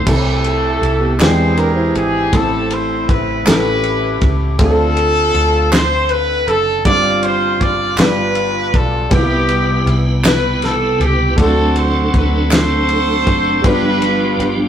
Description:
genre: slow gospel.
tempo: 53 BPM (dotted quarters).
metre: 6/8.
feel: straight.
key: C major.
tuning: A4 = 440 Hz.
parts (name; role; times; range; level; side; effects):
warm horn section; melody; 0.0-14.7 s; B3 to D5; -16 LUFS; equal; none.
warm upright piano; accompaniment; 0.0-14.7 s; G2 to G5; -20 LUFS; equal; none.
tonewheel organ; sustained chords; 0.0, 9.1-14.7 s; C3 to B4; -18 LUFS; equal; chorus vibrato, fast rotary speaker.
fingered electric bass; bass; 0.0-14.7 s; F#1 to E2; -20 LUFS; equal; none.
warm soul drum kit; drums; 0.1-14.6 s; crash cymbal, kick drum, ride cymbal, snare drum; -19 LUFS; equal; none.
mellow electric guitar; second line; 1.0-2.3 s; B3 to B#4; -19 LUFS; right 2 dB; none.
group handclap; percussion; 1.2-12.9 s; none; -22 LUFS; right 2 dB; none.
room: wet studio reverb, RT60 0.6 s.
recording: rough rehearsal-room recording.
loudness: -12 LUFS.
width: side -9 dB against mid.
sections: 0.1-14.7 A section.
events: none.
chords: 0.1 C6; 1.2 E7alt; 2.3 Am7; 3.5 A7; 4.6 Dm7; 6.9 G7sus4; 8.0 G7; 9.1 Cmaj7; 11.4 D7; 13.6 G7.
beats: | 0.06 1.20 | 2.33 3.46 | 4.59 5.72 | 6.86 7.99 | 9.12 10.25 | 11.38 12.51 | 13.64.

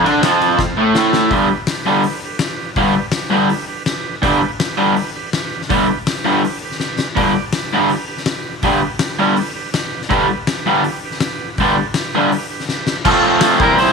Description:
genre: garage rock duo or trio.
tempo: 164 BPM.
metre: 4/4.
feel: straight.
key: G mixolydian.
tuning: A4 = 440 Hz.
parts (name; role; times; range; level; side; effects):
combo organ; sustained chords; 0.0-13.9 s; C4 to D5; -26 LUFS; right 11 dB; spring reverb.
raw garage guitar; riff; 0.0-13.9 s; F2 to F4; -14 LUFS; equal; overdrive.
oversized low-tuned drum kit; drums; 0.1-13.9 s; crash cymbal, hi-hat, kick drum, ride cymbal, snare drum; -21 LUFS; left 3 dB; none.
overdriven harmonica; melody; 13.6-13.9 s; Bb4 to C5; -14 LUFS; equal; none.
room: light reverb, studio reverb.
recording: 1960s-style stereo.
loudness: -14 LUFS.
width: side -5 dB against mid.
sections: 0.0-1.3 A section; 1.3-13.1 B section.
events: drum fill 0.6-1.3, 6.8-7.2, 12.7-13.1.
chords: 0.0 F5; 1.3 G; 13.1 F.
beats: 0.23 0.59 0.96 | 1.32 1.69 2.05 2.42 | 2.78 3.15 3.51 3.88 | 4.24 4.61 4.97 5.34 | 5.71 6.07 6.44 6.81 | 7.17 7.54 7.91 8.27 | 8.64 9.01 9.38 9.74 | 10.11 10.48 10.85 11.22 | 11.58 11.95 12.32 12.69 | 13.05 13.42 13.79.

